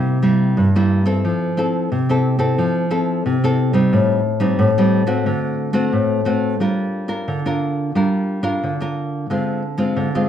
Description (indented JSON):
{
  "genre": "samba",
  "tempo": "89 BPM",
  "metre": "4/4",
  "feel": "straight",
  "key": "G minor",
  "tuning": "A4 = 437 Hz",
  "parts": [
    { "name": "nylon-string guitar", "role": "solo", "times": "0.0-10.3 s", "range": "G2 to Bb4", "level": "-16 LUFS", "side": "equal", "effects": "none" }
  ],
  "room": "wet large studio reverb, RT60 0.9 s",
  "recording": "band playing live in one room",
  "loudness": "-16 LUFS",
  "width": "side -9 dB against mid",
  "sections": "0.0-6.6 A section; 6.6-10.3 B section",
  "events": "none",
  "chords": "0.0 C7; 1.2 Fmaj7; 3.9 Am7b5; 5.3 D7; 6.6 Gm7; 9.3 Dm7b5"
}